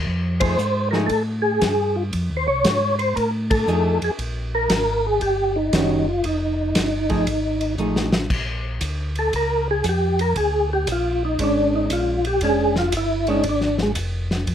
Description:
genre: soul jazz organ trio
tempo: 117 BPM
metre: 4/4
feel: swing 67% on 8ths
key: Bb mixolydian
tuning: A4 = 440 Hz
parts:
  - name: mellow tonewheel organ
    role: bass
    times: 0.0-14.5 s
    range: F1 to A2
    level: -25 LUFS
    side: equal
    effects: slow rotary speaker
  - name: warm soul drum kit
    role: drums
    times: 0.1-14.5 s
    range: crash cymbal, hi-hat, kick drum, ride cymbal, snare drum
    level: -27 LUFS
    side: equal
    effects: none
  - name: percussive tonewheel organ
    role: melody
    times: 0.4-13.9 s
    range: Ab3 to Db5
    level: -21 LUFS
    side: equal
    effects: chorus vibrato, fast rotary speaker
  - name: vintage hollow-body jazz guitar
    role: accompaniment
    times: 0.4-8.1, 11.4-13.4 s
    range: Eb3 to G#4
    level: -23 LUFS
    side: right 1 dB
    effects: none
room: light reverb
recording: none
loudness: -19 LUFS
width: side -9 dB against mid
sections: 0.0-8.3 A section; 8.3-14.5 B section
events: band accent 0.3, 3.4; drum fill 7.8-8.3; tonewheel organ solo 8.3-14.5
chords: 0.1 F7#9; 4.2 Absus2; 5.2 Eb7#9; 6.2 F7#9; 8.3 Bb7#9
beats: | 0.07 0.59 1.10 1.62 | 2.13 2.65 3.16 3.67 | 4.19 4.70 5.22 5.73 | 6.25 6.76 7.27 7.79 | 8.30 8.82 9.33 9.85 | 10.36 10.88 11.39 11.90 | 12.42 12.94 13.45 13.96 | 14.48

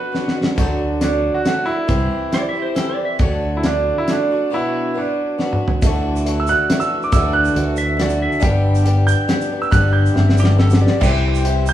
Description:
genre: folk rock and heartland rock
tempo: 138 BPM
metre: 3/4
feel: straight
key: D mixolydian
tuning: A4 = 440 Hz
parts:
  - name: bright concert grand piano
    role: melody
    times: 0.0-11.7 s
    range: D4 to G6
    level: -20 LUFS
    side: right 3 dB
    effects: none
  - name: mellow reed electric piano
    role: accompaniment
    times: 0.0-11.7 s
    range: D4 to G5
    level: -29 LUFS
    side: right 4 dB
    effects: fast tremolo
  - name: picked twelve-string acoustic guitar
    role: accompaniment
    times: 0.0-11.7 s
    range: G2 to G4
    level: -23 LUFS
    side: left 3 dB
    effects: none
  - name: damped 70s drum kit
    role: drums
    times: 0.1-11.6 s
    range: crash cymbal, hi-hat, kick drum, snare drum, splash cymbal, toms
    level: -20 LUFS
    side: equal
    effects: none
  - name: fingered electric bass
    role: bass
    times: 0.6-11.7 s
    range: G1 to D2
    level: -18 LUFS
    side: equal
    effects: none
  - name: pedal steel guitar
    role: second line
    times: 2.3-3.5, 7.8-11.6 s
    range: G4 to G5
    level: -24 LUFS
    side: right 1 dB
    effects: none
  - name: egg shaker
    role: percussion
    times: 5.8-11.7 s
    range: none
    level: -38 LUFS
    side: right 8 dB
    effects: none
room: moderate large studio reverb, RT60 1.3 s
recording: band playing live in one room, studio reverb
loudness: -15 LUFS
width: side -12 dB against mid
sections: 0.0-5.8 A section; 5.8-11.7 B section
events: drum fill 0.1-0.6, 5.4-5.8, 10.2-11.0; break 4.5-5.8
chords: 0.0 Bm; 0.6 D; 1.9 C; 3.2 D; 4.5 Bm; 5.8 Dadd9; 8.4 G; 11.0 C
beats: 0.14 | 0.58 1.02 1.46 | 1.90 2.34 2.77 | 3.21 3.65 4.09 | 4.52 4.96 5.40 | 5.83 6.27 6.70 | 7.14 7.57 8.00 | 8.44 8.87 9.30 | 9.73 10.17 10.60 | 11.03 11.46

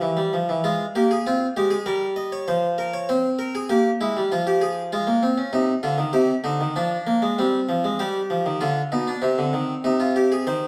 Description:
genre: classical, baroque-style two-part invention for harpsichord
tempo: 98 BPM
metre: 4/4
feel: straight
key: F minor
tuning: A4 = 436 Hz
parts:
  - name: harpsichord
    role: solo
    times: 0.0-10.7 s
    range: B2 to Eb5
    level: -22 LUFS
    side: equal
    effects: none
room: wet stone room reverb, RT60 1.1 s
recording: heard from further back in the room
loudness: -23 LUFS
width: mono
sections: 0.7-10.5 A section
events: none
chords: 0.0 Em; 0.7 Fm/Ab; 1.9 Gm7b5; 3.1 C; 4.3 Fm; 5.5 Cm; 6.8 Dm7b5/F; 8.0 G; 9.2 Cm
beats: 0.02 | 0.65 1.26 1.87 2.48 | 3.09 3.70 4.31 4.92 | 5.52 6.13 6.76 7.38 | 8.00 8.61 9.23 9.85 | 10.47

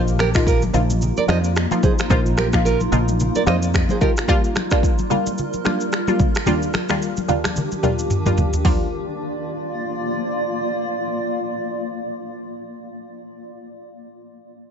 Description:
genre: afrobeats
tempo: 110 BPM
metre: 4/4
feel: swing 58% on 16ths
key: Bb major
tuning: A4 = 440 Hz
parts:
  - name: analog pluck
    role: accompaniment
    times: 0.0-12.8 s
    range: Eb2 to F4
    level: -23 LUFS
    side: equal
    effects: chorus, phaser
  - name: granular cloud pad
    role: sustained chords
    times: 0.0-12.8 s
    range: Eb3 to D5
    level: -26 LUFS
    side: equal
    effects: built-in reverb
  - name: fingered electric bass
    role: bass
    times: 0.0-3.8 s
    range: Bb1 to F2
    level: -20 LUFS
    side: equal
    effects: none
  - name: afro-pop drum kit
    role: drums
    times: 0.1-8.8 s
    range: finger snaps, hi-hat, kick drum, rim click, shaker, toms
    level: -21 LUFS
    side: equal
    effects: vintage 12-bit sampler grit
  - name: nylon-string guitar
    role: riff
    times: 0.2-4.1 s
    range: F4 to Eb5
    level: -24 LUFS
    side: right 6 dB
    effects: ping-pong delay
  - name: congas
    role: percussion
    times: 0.2-8.9 s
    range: none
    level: -26 LUFS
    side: left 3 dB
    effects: none
room: light reverb, digital ambience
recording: nothing above 7.9 kHz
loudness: -18 LUFS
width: side -7 dB against mid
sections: 0.0-8.6 A section; 8.6-13.0 B section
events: drum fill 7.6-8.6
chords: 0.0 Bbsus4; 4.3 Gm7; 6.5 Ebmaj7; 8.6 Bb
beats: 0.47 1.01 1.56 | 2.10 2.65 3.19 3.74 | 4.28 4.83 5.38 5.92 | 6.47 7.01 7.56 8.10 | 8.65 9.19 9.74 10.28 | 10.83 11.38 11.92 12.47

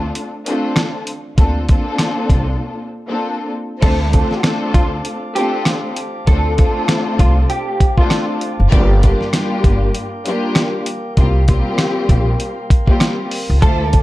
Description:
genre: hip hop, boom-bap hip-hop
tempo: 98 BPM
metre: 4/4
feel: swing 57% on 16ths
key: D minor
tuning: A4 = 440 Hz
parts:
  - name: warm studio string section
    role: accompaniment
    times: 0.0-13.3 s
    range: G3 to A4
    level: -21 LUFS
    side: left 1 dB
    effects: cassette tape, high-pass filter, low-pass filter
  - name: upright bass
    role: bass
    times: 0.0-14.0 s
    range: F#1 to D2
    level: -16 LUFS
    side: equal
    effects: none
  - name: dusty soul sampler-style drum kit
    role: drums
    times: 0.2-14.0 s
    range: crash cymbal, hi-hat, kick drum, rim click, snare drum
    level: -15 LUFS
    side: equal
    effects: none
  - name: electric guitar at the edge of break-up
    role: melody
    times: 3.8-8.3, 13.6-14.0 s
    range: F4 to A4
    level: -22 LUFS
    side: right 1 dB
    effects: ensemble chorus, high-pass filter, low-pass filter, tape echo
  - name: mellow tonewheel organ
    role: sustained chords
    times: 3.8-14.0 s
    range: Bb4 to D6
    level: -29 LUFS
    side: equal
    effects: stopped rotary speaker, high-pass filter, low-pass filter
  - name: clear studio string section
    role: stabs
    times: 3.8-4.2, 8.7-9.0, 13.6-14.0 s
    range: A3 to D5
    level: -26 LUFS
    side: equal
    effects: high-pass filter, low-pass filter, tape echo
room: studio ambience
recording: dark, warm production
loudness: -14 LUFS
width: side -17 dB against mid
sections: 0.0-3.8 A section; 3.8-14.0 B section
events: break 2.6-3.8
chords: 0.0 Dm7; 1.4 Bbmaj9; 3.8 Dm7; 8.7 Gm7; 11.2 C7sus4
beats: 0.15 0.77 | 1.38 1.99 2.60 3.21 | 3.83 4.44 5.05 5.66 | 6.28 6.89 7.50 8.11 | 8.72 9.34 9.95 10.56 | 11.17 11.79 12.40 13.01 | 13.62

